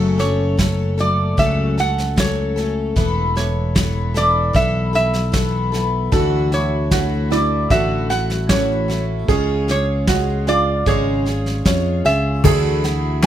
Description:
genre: acoustic folk duo or small band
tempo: 76 BPM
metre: 4/4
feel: straight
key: F# minor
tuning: A4 = 441 Hz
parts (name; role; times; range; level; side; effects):
- picked twelve-string acoustic guitar; accompaniment; 0.0-13.3 s; F#2 to A4; -22 LUFS; left 3 dB; none
- fingered electric bass; bass; 0.0-13.3 s; E1 to E#2; -21 LUFS; equal; none
- lap resonator guitar; melody; 0.2-12.8 s; C#5 to F#5; -21 LUFS; right 2 dB; none
- soft brush drum kit; drums; 0.2-13.3 s; crash cymbal, kick drum, snare drum; -21 LUFS; equal; none
- clear upright piano; arpeggios; 6.1-13.3 s; C#4 to A4; -23 LUFS; right 7 dB; none
- cajon; percussion; 12.4-13.3 s; none; -16 LUFS; left 3 dB; none
room: light reverb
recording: none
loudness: -16 LUFS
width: side -11 dB against mid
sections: 0.0-12.4 A section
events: none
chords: 0.0 F#m; 3.0 Esus4; 6.1 Dadd9; 9.3 C#; 12.4 Dadd9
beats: 0.58 1.38 2.17 | 2.96 3.75 4.54 5.33 | 6.12 6.91 7.70 8.49 | 9.29 10.07 10.87 11.66 | 12.45 13.24

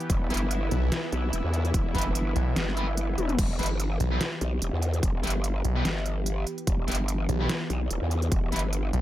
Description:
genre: heavy wobble dubstep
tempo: 146 BPM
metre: 4/4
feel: swing 54% on 16ths, half-time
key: E minor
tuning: A4 = 439 Hz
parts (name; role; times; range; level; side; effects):
- lush unison pad; sustained chords; 0.0-9.0 s; E3 to G4; -34 LUFS; equal; chorus, sidechain pumping
- dubstep drum kit; drums; 0.0-9.0 s; crash cymbal, hi-hat, snare drum, toms; -32 LUFS; equal; none
- growl bass; bass; 0.1-8.9 s; E1 to E2; -27 LUFS; equal; distortion, chorus, overdrive
- electronic kick drum; drums; 0.1-8.4 s; none; -27 LUFS; equal; none
- distorted electric guitar; stabs; 0.3-8.6 s; E4 to B4; -37 LUFS; equal; distortion, dub echo
- snarling distorted saw bass; bass; 0.7-9.0 s; B1; -25 LUFS; equal; distortion, overdrive
room: little or no reverb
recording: none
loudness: -25 LUFS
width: side -14 dB against mid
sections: 0.0-3.4 A section; 3.4-9.0 A section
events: drop 0.0-3.4, 3.4-9.0; drum fill 3.2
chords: 0.0 Em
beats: | 0.10 0.51 0.92 1.33 | 1.74 2.15 2.56 2.97 | 3.38 3.80 4.21 4.62 | 5.03 5.44 5.85 6.26 | 6.67 7.08 7.50 7.91 | 8.32 8.73

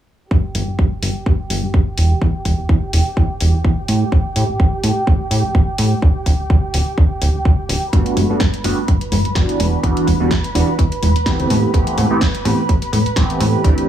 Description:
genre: filtered disco house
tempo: 126 BPM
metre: 4/4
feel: swing 54% on 16ths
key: G major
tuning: A4 = 435 Hz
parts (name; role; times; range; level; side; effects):
- dark studio string section; sustained chords; 0.3-13.9 s; G4 to B5; -25 LUFS; right 2 dB; vintage 12-bit sampler grit, sidechain pumping, low-pass filter
- plucky analog bass; bass; 0.3-13.7 s; D1 to A2; -17 LUFS; right 1 dB; sidechain pumping, low-pass filter
- electronic kick drum; drums; 0.3-13.7 s; none; -16 LUFS; equal; none
- house drum kit; drums; 0.5-13.9 s; hi-hat, snare drum; -25 LUFS; equal; sidechain pumping on hats
- funky polysynth comp; accompaniment; 7.9-13.9 s; E3 to G4; -19 LUFS; right 2 dB; chorus, phaser, cassette tape, sidechain pumping, low-pass filter
- egg shaker and congas; percussion; 7.9-13.7 s; none; -25 LUFS; left 5 dB; sidechain pumping on perc, low-pass filter on perc
room: little or no reverb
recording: small room ambience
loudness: -14 LUFS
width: side -11 dB against mid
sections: 0.3-13.9 A section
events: filter sweep 0.3-13.9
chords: 0.3 N.C.; 2.0 Em; 3.9 Gsus2/A; 6.0 Dsus4; 7.9 Gmaj7; 9.6 Em7; 11.5 Am9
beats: | 0.31 0.79 1.26 1.74 | 2.22 2.69 3.17 3.65 | 4.12 4.60 5.07 5.55 | 6.03 6.50 6.98 7.45 | 7.93 8.41 8.88 9.36 | 9.84 10.31 10.79 11.26 | 11.74 12.22 12.69 13.17 | 13.64

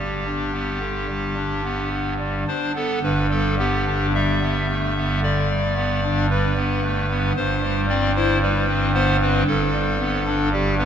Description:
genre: classical, chorale-style piece for pipe organ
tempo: 53-57 BPM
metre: 4/4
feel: rubato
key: G major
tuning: A4 = 440 Hz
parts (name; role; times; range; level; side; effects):
- pipe organ, clarinet reed; solo; 0.0-10.9 s; G1 to E5; -19 LUFS; equal; none
room: wet cathedral reverb, RT60 6.1 s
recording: nothing above 10.6 kHz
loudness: -19 LUFS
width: side -8 dB against mid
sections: 0.0-3.0 A section; 3.0-10.9 A section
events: none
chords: 0.0 G; 7.4 C5/G; 9.5 G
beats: 0.83 1.93 | 3.04 4.15 5.24 6.30 | 7.36 8.41 9.47 10.52

